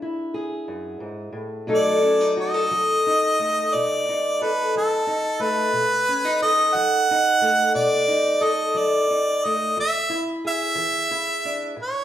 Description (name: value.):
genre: blues.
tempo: 59 BPM (dotted quarters).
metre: 12/8.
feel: straight.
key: unclear.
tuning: A4 = 441 Hz.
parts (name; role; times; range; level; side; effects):
fingerpicked steel-string acoustic guitar; accompaniment; 0.0-12.0 s; E2 to A4; -24 LUFS; left 1 dB; none.
clear harmonica; melody; 1.7-12.0 s; A4 to F#5; -20 LUFS; right 1 dB; none.
room: wet large studio reverb, RT60 1.3 s.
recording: band playing live in one room.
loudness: -19 LUFS.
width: side -11 dB against mid.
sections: 0.0-12.0 A section.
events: none.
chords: 0.0 E7; 1.7 B7; 9.8 E7.